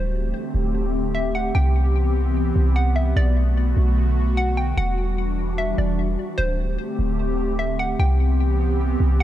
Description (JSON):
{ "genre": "hip hop", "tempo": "149 BPM", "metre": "4/4", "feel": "half-time", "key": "C lydian", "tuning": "A4 = 440 Hz", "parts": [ { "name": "hollow square pluck", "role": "melody", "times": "0.0-9.2 s", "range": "C5 to G5", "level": "-29 LUFS", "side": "equal", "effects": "chorus, ping-pong delay" }, { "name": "airy breathy pad", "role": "sustained chords", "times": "0.0-9.2 s", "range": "D3 to G4", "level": "-25 LUFS", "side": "equal", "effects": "chorus" }, { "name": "warm 808-style bass", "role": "bass", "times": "0.0-9.2 s", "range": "D1 to C2", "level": "-20 LUFS", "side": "equal", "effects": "none" } ], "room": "little or no reverb", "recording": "dark, warm production", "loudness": "-19 LUFS", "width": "side -12 dB against mid", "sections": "0.0-9.2 A section", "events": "none", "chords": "0.0 D7sus4; 1.6 Cmaj7; 3.2 Bm7; 4.8 Em9; 6.4 D7sus4; 8.0 Cmaj7" }